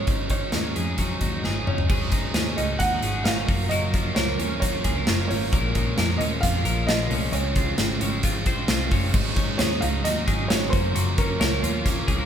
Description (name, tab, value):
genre	jangly indie pop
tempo	132 BPM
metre	4/4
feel	straight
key	unclear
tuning	A4 = 438 Hz
part	warm upright piano	melody	0.0-12.0 s	Bb4 to Gb5	-30 LUFS	right 2 dB	none
part	biting overdriven guitar	accompaniment	0.0-12.3 s	Gb2 to Eb4	-30 LUFS	right 2 dB	none
part	twelve-string electric guitar	arpeggios	0.0-12.3 s	Ab2 to C5	-30 LUFS	left 4 dB	tape echo
part	vintage muted picked electric bass	bass	0.0-12.3 s	Gb1 to F2	-28 LUFS	equal	none
part	big rock drum kit	drums	0.1-12.2 s	crash cymbal, hi-hat, kick drum, snare drum, toms	-24 LUFS	equal	none
room	moderate large studio reverb, RT60 1.2 s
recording	band playing live in one room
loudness	-21 LUFS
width	side -8 dB against mid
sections	0.0-1.9 A section; 1.9-9.1 B section; 9.1-12.3 C section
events	drum fill 1.4-1.9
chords	0.1 Ab7sus4; 3.5 Gbmaj7; 5.5 Bbm7; 7.3 Dbmaj7; 9.1 Ab7sus4; 10.7 Gbmaj7